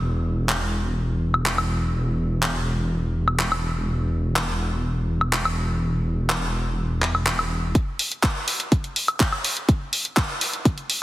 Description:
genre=progressive house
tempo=124 BPM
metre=4/4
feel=straight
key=unclear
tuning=A4 = 440 Hz
part: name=dark detuned saw bass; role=bass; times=0.0-7.7 s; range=E1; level=-23 LUFS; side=equal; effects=sidechain pumping
part: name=house drum kit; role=drums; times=0.5-11.0 s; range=handclaps, hi-hat, woodblock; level=-24 LUFS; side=equal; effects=high-pass filter on snare, high-pass filter on perc, high-pass filter on hats, high-pass filter on room
part: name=electronic kick drum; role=drums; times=7.8-10.8 s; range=none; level=-20 LUFS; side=equal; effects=none
room=light reverb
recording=heavily compressed radio sound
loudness=-21 LUFS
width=side -16 dB against mid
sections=0.0-7.8 A section; 7.8-11.0 B section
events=build-up 7.8-11.0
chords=none

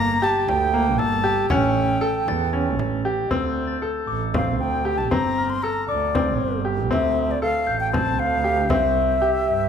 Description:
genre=contemporary instrumental, chamber music in an uneven meter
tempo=234 BPM (eighths)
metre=7/8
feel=straight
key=D minor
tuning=A4 = 440 Hz
part: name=breathy bright concert flute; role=melody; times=0.0-9.7 s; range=D5 to C6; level=-23 LUFS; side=left 1 dB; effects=none
part: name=bright grand piano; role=arpeggios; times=0.0-9.7 s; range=Bb3 to A4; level=-24 LUFS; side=left 2 dB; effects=none
part: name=clear double bass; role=bass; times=0.0-9.7 s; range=G1 to G2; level=-26 LUFS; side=right 6 dB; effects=none
part: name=frame drum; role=percussion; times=0.5-8.9 s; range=none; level=-30 LUFS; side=left 1 dB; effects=none
part: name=glockenspiel with rubber mallets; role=texture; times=1.0-8.9 s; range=D6 to A6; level=-32 LUFS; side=left 6 dB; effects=none
room=moderate recital hall reverb, RT60 1.7 s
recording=minimal, uncompressed stereo recording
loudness=-19 LUFS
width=side -7 dB against mid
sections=0.0-3.3 A section; 3.3-9.7 B section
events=none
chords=0.0 Gm; 1.5 A7; 3.3 D9sus4; 5.1 G9sus4; 6.9 Dm7; 8.7 C

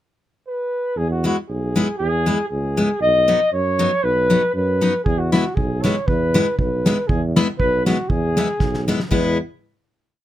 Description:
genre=alpine folk, alpine dance band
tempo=118 BPM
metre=2/4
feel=swing 54% on 8ths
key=E major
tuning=A4 = 440 Hz
part: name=mellow flugelhorn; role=melody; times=0.5-9.4 s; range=F#4 to D#5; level=-20 LUFS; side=equal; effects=none
part: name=warm tuba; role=bass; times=1.0-9.4 s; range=B1 to F#2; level=-23 LUFS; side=right 1 dB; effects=none
part: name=picked steel-string acoustic guitar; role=accompaniment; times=1.2-9.4 s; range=F#3 to E4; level=-20 LUFS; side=left 3 dB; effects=none
part: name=natural country drum kit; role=drums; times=5.1-9.2 s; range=crash cymbal, kick drum, snare drum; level=-22 LUFS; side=right 1 dB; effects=none
room=light reverb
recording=none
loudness=-17 LUFS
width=side -13 dB against mid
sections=0.0-1.0 pickup bar; 1.0-9.1 A section; 9.1-10.1 final chord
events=drum fill 8.6-9.1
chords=0.0 N.C.; 1.0 E; 3.0 B; 5.1 E

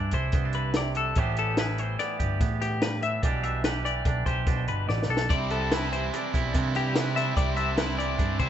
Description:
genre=math rock and midwest emo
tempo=145 BPM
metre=5/4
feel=straight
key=A minor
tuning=A4 = 440 Hz
part: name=twangy electric guitar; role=accompaniment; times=0.0-8.5 s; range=E2 to G4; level=-33 LUFS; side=right 8 dB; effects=none
part: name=twelve-string electric guitar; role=arpeggios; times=0.0-8.5 s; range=G4 to E5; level=-30 LUFS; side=left 6 dB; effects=spring reverb
part: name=picked electric bass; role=bass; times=0.0-8.5 s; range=G1 to C3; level=-29 LUFS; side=equal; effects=none
part: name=compact cocktail drum kit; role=drums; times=0.1-8.5 s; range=hi-hat, kick drum, snare drum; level=-28 LUFS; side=equal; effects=none
part: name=overdriven electric guitar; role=riff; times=5.3-8.5 s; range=C3 to E4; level=-32 LUFS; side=right 2 dB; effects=none
room=light reverb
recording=band playing live in one room, nothing above 8.0 kHz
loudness=-24 LUFS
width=side -10 dB against mid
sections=0.0-8.5 A section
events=drum fill 4.9-5.3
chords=0.0 Cmaj9; 1.2 Am9; 5.3 Cmaj9

